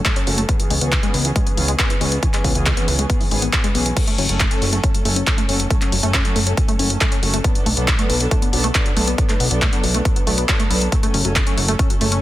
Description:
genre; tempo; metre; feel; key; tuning
uplifting trance; 138 BPM; 4/4; straight; F# minor; A4 = 441 Hz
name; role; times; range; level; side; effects
dark symphonic string section; sustained chords; 0.1-12.2 s; E3 to A4; -25 LUFS; right 1 dB; sidechain pumping, low-pass filter
tight sequenced synth; arpeggios; 0.1-12.2 s; E3 to C#4; -25 LUFS; left 2 dB; chorus, sidechain pumping, tape echo
big-room dance drum kit; drums; 0.1-12.2 s; crash cymbal, handclaps, hi-hat; -21 LUFS; left 1 dB; sidechain pumping on hats, sidechain pumping on cymbals
electronic kick drum; drums; 0.1-11.9 s; none; -19 LUFS; equal; none
fat analog bass; bass; 0.3-12.2 s; F#1 to C#2; -21 LUFS; equal; sidechain pumping
room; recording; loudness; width
light reverb, digital ambience; dense, heavily limited modern master; -16 LUFS; side -15 dB against mid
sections
0.0-12.2 A section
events
filter sweep on synth arpeggio sound 0.0-12.2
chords
0.5 C#m7; 4.0 F#m; 7.4 Bm7; 10.9 F#m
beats
0.05 | 0.49 0.92 1.36 1.79 | 2.23 2.66 3.10 3.53 | 3.97 4.40 4.84 5.27 | 5.71 6.14 6.58 7.01 | 7.44 7.88 8.31 8.75 | 9.18 9.62 10.05 10.49 | 10.92 11.36 11.79

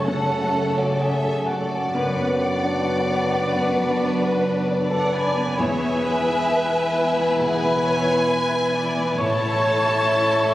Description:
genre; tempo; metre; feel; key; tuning
cinematic, emotional film score for orchestra; 66 BPM; 4/4; rubato; E mixolydian; A4 = 440 Hz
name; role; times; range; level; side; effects
rich studio violin section; melody; 0.0-10.5 s; D5 to A5; -29 LUFS; left 1 dB; none
dark clarinet; second line; 0.0-10.5 s; F#4 to C#5; -28 LUFS; equal; none
mellow small flute group; second line; 0.0-10.5 s; F#5 to C#6; -27 LUFS; left 1 dB; none
warm studio violin section; second line; 0.0-10.5 s; C#4 to B4; -27 LUFS; left 1 dB; none
felt-muted upright piano; accompaniment; 0.0-10.5 s; E2 to C#6; -29 LUFS; equal; none
warm studio viola section; accompaniment; 0.0-10.5 s; A3 to D5; -29 LUFS; equal; none
mellow French horn section; sustained chords; 0.0-10.5 s; C#3 to E4; -28 LUFS; left 1 dB; none
concert harp; arpeggios; 0.0-10.5 s; E2 to C#5; -28 LUFS; left 2 dB; none
rich studio cello section; bass; 0.0-10.5 s; E2 to A2; -32 LUFS; right 2 dB; none
rich studio double bass section; bass; 0.0-10.5 s; E1 to A1; -32 LUFS; right 2 dB; none
timpani; percussion; 5.6-6.9 s; E2; -35 LUFS; right 2 dB; none
room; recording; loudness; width
moderate scoring stage reverb, RT60 1.8 s; recorded on a phone in the room, club reverb; -19 LUFS; side -15 dB against mid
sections
0.0-10.5 A section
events
none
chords
0.0 F#m; 1.9 Bm/F#; 5.6 E; 9.2 A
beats
0.09 1.01 | 1.94 2.85 3.76 4.68 | 5.59 6.49 7.39 8.28 | 9.18 10.09

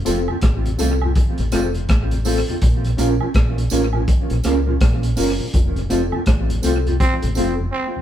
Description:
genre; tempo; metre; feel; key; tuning
roots reggae; 82 BPM; 4/4; swing 62% on 16ths; unclear; A4 = 440 Hz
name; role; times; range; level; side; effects
deep dub fingered electric bass; bass; 0.0-7.7 s; F1 to Db2; -21 LUFS; equal; none
mellow electric guitar; accompaniment; 0.1-7.5 s; C4 to Bb4; -24 LUFS; right 2 dB; analog delay
mellow tonewheel organ; accompaniment; 0.1-8.0 s; F2 to F4; -29 LUFS; left 2 dB; chorus vibrato, slow rotary speaker, analog delay
reed electric piano; stabs; 0.1-7.6 s; C4 to Bb4; -25 LUFS; left 1 dB; fast tremolo
crunchy breakbeat drum kit; drums; 0.1-7.6 s; hi-hat, kick drum, rim click; -19 LUFS; equal; none
tambourine and woodblock; percussion; 0.1-7.6 s; none; -32 LUFS; right 5 dB; none
growling trombone; second line; 7.0-8.0 s; C4; -23 LUFS; right 2 dB; none
room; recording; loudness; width
light reverb; band playing live in one room; -16 LUFS; side -11 dB against mid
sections
0.0-8.0 A section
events
band accent 5.5-8.0; break 7.7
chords
0.0 F; 2.6 Bbm; 5.5 F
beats
0.43 1.16 1.89 | 2.62 3.35 4.08 4.81 | 5.54 6.27 7.00 7.73

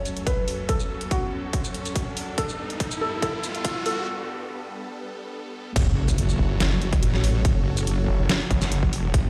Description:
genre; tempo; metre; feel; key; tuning
heavy wobble dubstep; 142 BPM; 4/4; half-time; F# phrygian; A4 = 443 Hz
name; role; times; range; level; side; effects
felt-muted upright piano; melody; 0.0-4.1 s; F#4 to C#5; -33 LUFS; equal; dub echo
supersaw chords; sustained chords; 0.0-9.3 s; F#2 to C#5; -36 LUFS; equal; phaser, sidechain pumping
riser and impact; sound effects; 0.2-7.4 s; none; -34 LUFS; equal; none
dubstep drum kit; drums; 0.1-9.2 s; crash cymbal, hi-hat, shaker, snare drum; -30 LUFS; equal; overdrive
electronic kick drum; drums; 0.3-9.2 s; none; -28 LUFS; equal; overdrive
wobble bass; bass; 5.8-9.3 s; F#1 to A1; -25 LUFS; equal; chorus, overdrive
snarling distorted saw bass; bass; 6.4-9.1 s; F#1; -26 LUFS; equal; distortion, overdrive
room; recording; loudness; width
light reverb; played on a big sound system in a bare room, large studio reverb, high-pass filter; -25 LUFS; mono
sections
0.0-5.8 A section; 5.8-9.3 B section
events
build-up 0.0-5.8; riser 0.2-4.1; drum fill 2.4-4.1; break 4.1-5.8; drop 5.8-9.3; impact 5.8-7.4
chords
0.0 F#m; 2.4 Gadd9; 5.8 F#m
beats
0.27 | 0.69 1.11 1.53 1.96 | 2.38 2.80 3.22 3.65 | 4.07 4.49 4.91 5.34 | 5.76 6.18 6.60 7.03 | 7.45 7.87 8.29 8.72 | 9.14

